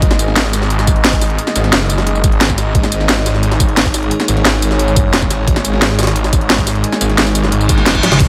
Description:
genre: dark technical drum and bass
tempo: 176 BPM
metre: 4/4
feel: straight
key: unclear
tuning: A4 = 440 Hz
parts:
  - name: metallic inharmonic drone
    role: sustained chords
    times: 0.0-8.3 s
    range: D#3 to D#5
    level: -23 LUFS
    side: equal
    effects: chorus, built-in reverb, phaser, sidechain pumping
  - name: snarling distorted saw bass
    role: bass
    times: 0.0-8.3 s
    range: F#1 to G#1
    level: -18 LUFS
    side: equal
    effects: distortion, overdrive, sidechain pumping
  - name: drum and bass drum kit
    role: drums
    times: 0.0-8.3 s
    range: crash cymbal, hi-hat, snare drum, tambourine, toms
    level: -18 LUFS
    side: equal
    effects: overdrive
  - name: electronic kick drum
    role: drums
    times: 0.0-8.3 s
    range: none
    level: -17 LUFS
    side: equal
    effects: overdrive
  - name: jungle sampler-style drum kit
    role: drums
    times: 0.0-8.3 s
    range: hi-hat, snare drum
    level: -25 LUFS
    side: equal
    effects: none
  - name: reverse cymbal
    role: sound effects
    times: 7.7-8.2 s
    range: none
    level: -19 LUFS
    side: equal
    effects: none
room: light reverb, digital ambience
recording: none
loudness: -13 LUFS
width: mono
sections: 0.0-8.3 A section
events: reverse cymbal 7.7-8.2; drum fill 8.0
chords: 0.0 G#5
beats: | 0.02 0.36 0.70 1.04 | 1.39 1.73 2.07 2.41 | 2.75 3.09 3.43 3.77 | 4.11 4.45 4.79 5.13 | 5.48 5.82 6.16 6.50 | 6.84 7.18 7.52 7.86 | 8.20

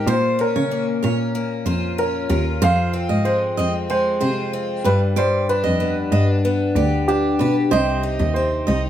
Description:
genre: pop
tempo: 94 BPM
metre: 4/4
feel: straight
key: F minor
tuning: A4 = 440 Hz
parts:
  - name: dark upright piano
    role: melody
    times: 0.0-8.9 s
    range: G4 to F5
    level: -23 LUFS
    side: right 1 dB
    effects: plate reverb
  - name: picked twelve-string acoustic guitar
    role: accompaniment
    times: 0.0-8.9 s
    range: F2 to G4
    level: -23 LUFS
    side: left 3 dB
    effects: none
  - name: warm cello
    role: bass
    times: 0.0-8.9 s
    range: C2 to Db3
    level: -22 LUFS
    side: equal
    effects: none
  - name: picked steel-string acoustic guitar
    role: arpeggios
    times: 0.1-8.8 s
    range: Bb4 to Eb5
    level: -26 LUFS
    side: right 4 dB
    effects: slapback echo
room: light reverb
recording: none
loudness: -17 LUFS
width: side -11 dB against mid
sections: 0.0-8.9 A section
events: none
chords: 0.1 Bbm; 2.6 Fm; 4.9 G7; 7.7 Cm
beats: | 0.07 0.71 1.35 1.99 | 2.62 3.26 3.90 4.54 | 5.17 5.81 6.45 7.08 | 7.72 8.36

